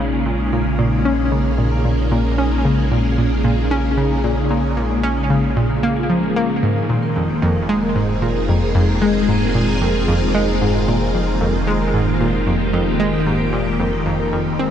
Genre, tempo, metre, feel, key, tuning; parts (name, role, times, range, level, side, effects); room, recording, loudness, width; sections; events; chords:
ambient, sequencer-driven space music; 113 BPM; 4/4; straight; Bb dorian; A4 = 440 Hz
phased string machine; sustained chords; 0.0-14.7 s; Db3 to Ab4; -21 LUFS; equal; ensemble chorus, phaser
vibraphone with medium mallets; arpeggios; 0.0-14.7 s; Ab3 to Bb4; -24 LUFS; left 2 dB; auto-pan, tape echo
analog pluck; riff; 0.0-14.7 s; F2 to Db4; -19 LUFS; equal; chorus, tape echo
round analog bass; bass; 0.0-14.7 s; F1 to Bb1; -23 LUFS; equal
wet huge ambient reverb, RT60 8.1 s; dark, warm production; -15 LUFS; side -9 dB against mid
0.0-14.7 A section
0.0 Bbm7; 6.6 Fm7